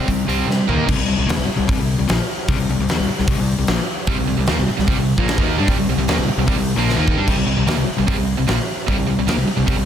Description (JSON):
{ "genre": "hard rock", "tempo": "150 BPM", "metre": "4/4", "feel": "straight", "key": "C minor", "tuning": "A4 = 440 Hz", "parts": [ { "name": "distorted electric guitar", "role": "riff", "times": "0.0-0.9, 4.1-9.9 s", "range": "Bb2 to Eb4", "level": "-22 LUFS", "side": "right 13 dB", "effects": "overdrive" }, { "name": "overdriven semi-hollow guitar", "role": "riff", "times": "0.0-9.9 s", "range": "Bb2 to Eb4", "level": "-21 LUFS", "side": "left 6 dB", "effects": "none" }, { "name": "fuzz fingered electric bass", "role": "bass", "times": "0.1-9.9 s", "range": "Bb1 to C3", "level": "-23 LUFS", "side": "equal", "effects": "overdrive" }, { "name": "big rock drum kit", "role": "drums", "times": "0.1-9.8 s", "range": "crash cymbal, hi-hat, kick drum, snare drum, toms", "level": "-21 LUFS", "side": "equal", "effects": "none" } ], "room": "studio reverb", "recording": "dense, heavily limited modern master", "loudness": "-16 LUFS", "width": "side -9 dB against mid", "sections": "0.9-7.3 A section; 7.3-9.9 B section", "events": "drum fill 0.5-0.9, 6.9-7.3", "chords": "0.0 C5; 0.7 Eb5; 0.9 Cm" }